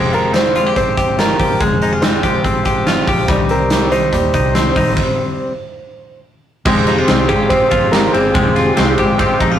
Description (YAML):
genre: jangly indie pop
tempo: 142 BPM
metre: 4/4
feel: straight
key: F minor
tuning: A4 = 440 Hz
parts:
  - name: picked steel-string acoustic guitar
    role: accompaniment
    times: 0.0-9.6 s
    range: C3 to G4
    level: -23 LUFS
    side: right 1 dB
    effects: none
  - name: direct-recorded clean electric guitar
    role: arpeggios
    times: 0.0-9.6 s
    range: G3 to G4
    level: -17 LUFS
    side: left 3 dB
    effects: none
  - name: vintage muted fingered electric bass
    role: bass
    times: 0.0-9.6 s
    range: F1 to Eb2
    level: -23 LUFS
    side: equal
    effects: none
  - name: mellow electric guitar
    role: melody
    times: 0.1-8.7 s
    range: Ab4 to C5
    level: -19 LUFS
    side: right 2 dB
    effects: none
  - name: big rock drum kit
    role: drums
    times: 0.1-9.5 s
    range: crash cymbal, hi-hat, kick drum, ride cymbal, snare drum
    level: -17 LUFS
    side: equal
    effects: none
  - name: warm analog keys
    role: accompaniment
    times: 6.7-9.6 s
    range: Ab3 to G4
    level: -18 LUFS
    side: right 2 dB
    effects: chorus
room: moderate studio reverb, RT60 0.5 s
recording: rough rehearsal-room recording, warm saturation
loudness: -12 LUFS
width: side -10 dB against mid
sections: 0.0-6.7 A section; 6.7-9.6 B section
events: stop 5.0-6.7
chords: 0.0 Fmadd9; 3.3 Cm; 6.7 Fmadd9